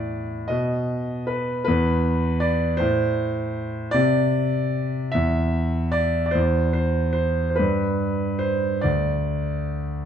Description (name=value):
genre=classical, lyrical solo piano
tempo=48-54 BPM (dotted quarters)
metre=6/8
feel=rubato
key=unclear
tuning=A4 = 440 Hz
part: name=clear concert grand piano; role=solo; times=0.0-10.1 s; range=D2 to E5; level=-20 LUFS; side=equal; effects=none
room=moderate recital hall reverb, RT60 1.5 s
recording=minimal, uncompressed stereo recording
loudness=-20 LUFS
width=side -8 dB against mid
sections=0.0-10.1 A section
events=none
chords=none